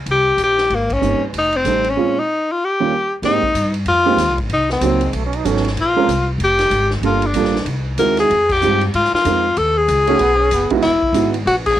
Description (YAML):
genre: jazz, small-group swing and bop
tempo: 190 BPM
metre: 4/4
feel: swing 61% on 8ths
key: Ab major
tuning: A4 = 440 Hz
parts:
  - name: upright bass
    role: bass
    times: 0.0-11.8 s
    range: E1 to Ab2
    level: -22 LUFS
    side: equal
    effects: none
  - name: bright tenor saxophone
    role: melody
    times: 0.1-11.8 s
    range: Bb3 to Bb4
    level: -16 LUFS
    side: left 2 dB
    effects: cassette tape
  - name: swinging big-band drum kit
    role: drums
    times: 0.1-11.7 s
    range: crash cymbal, hi-hat, kick drum, ride cymbal, snare drum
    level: -28 LUFS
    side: equal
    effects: cassette tape
  - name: dark baby grand piano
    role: accompaniment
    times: 1.0-11.3 s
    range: Eb2 to Bb4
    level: -19 LUFS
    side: right 8 dB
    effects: cassette tape
  - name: growling trombone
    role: second line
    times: 5.0-5.7, 10.1-10.8 s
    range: Ab3 to D#4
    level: -24 LUFS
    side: right 7 dB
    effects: cassette tape
room: moderate studio ambience, RT60 0.5 s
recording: home recording on cassette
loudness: -14 LUFS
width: side -12 dB against mid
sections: 0.0-3.2 A section; 3.2-11.8 B section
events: band accent 0.9, 8.5, 11.6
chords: 0.0 Eb (rootless); 0.7 Abmaj9; 1.3 F7; 2.0 Bbm7; 2.6 Eb9; 3.2 Abmaj7; 4.5 Cm7b5; 5.1 B9; 5.8 Bb7sus2; 7.0 Gm9; 7.7 Caug; 8.3 Fm9; 9.6 B69; 10.8 Emaj7